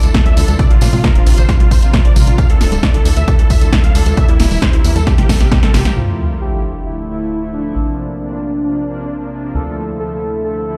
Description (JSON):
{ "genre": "uplifting trance", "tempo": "134 BPM", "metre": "4/4", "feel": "straight", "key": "D minor", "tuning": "A4 = 438 Hz", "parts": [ { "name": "dense compressed supersaw", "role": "melody", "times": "0.0-5.9 s", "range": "E4 to F5", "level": "-25 LUFS", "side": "equal", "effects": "sidechain pumping, low-pass filter, digital delay" }, { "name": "lush unison pad", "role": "sustained chords", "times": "0.0-10.8 s", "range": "C3 to Bb4", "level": "-27 LUFS", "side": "equal", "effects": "chorus, sidechain pumping" }, { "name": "unison pluck", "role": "arpeggios", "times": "0.0-5.9 s", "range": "C3 to Bb3", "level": "-26 LUFS", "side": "equal", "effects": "none" }, { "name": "tight sequencer bass", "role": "bass", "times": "0.0-10.8 s", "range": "D1 to Bb2", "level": "-18 LUFS", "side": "equal", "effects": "sidechain pumping" }, { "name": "house drum kit", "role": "drums", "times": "0.0-6.1 s", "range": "congas, crash cymbal, hi-hat, snare drum", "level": "-23 LUFS", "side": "equal", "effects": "low-pass filter on hats, low-pass filter on snare, low-pass filter on perc, low-pass filter on cymbals" }, { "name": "tambourine", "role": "percussion", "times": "0.0-5.9 s", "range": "none", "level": "-32 LUFS", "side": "equal", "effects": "none" }, { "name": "electronic kick drum", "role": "drums", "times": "0.1-5.6 s", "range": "none", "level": "-14 LUFS", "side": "equal", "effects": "none" }, { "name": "warm velvety synth lead", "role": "second line", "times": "6.0-10.8 s", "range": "D4 to A4", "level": "-24 LUFS", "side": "equal", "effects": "chorus, tape echo" }, { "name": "sub drop", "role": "sound effects", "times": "6.0-7.8 s", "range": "none", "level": "-24 LUFS", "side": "equal", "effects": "none" } ], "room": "light reverb", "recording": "played on a big sound system in a bare room, large studio reverb", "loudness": "-14 LUFS", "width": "mono", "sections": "0.0-6.0 A section; 6.0-10.8 B section", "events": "drum fill 5.1-6.0; impact 6.0-7.8", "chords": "0.0 Dmadd9; 0.6 Bbadd9; 2.4 Dmadd9; 4.2 Edim; 5.1 C7sus4; 6.0 Dmadd9; 7.8 Bbadd9; 9.5 Dmadd9", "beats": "0.14 | 0.59 1.04 1.49 1.94 | 2.38 2.83 3.28 3.73 | 4.17 4.62 5.07 5.52 | 5.96 6.41 6.86 7.31 | 7.76 8.20 8.65 9.10 | 9.55 9.99 10.44" }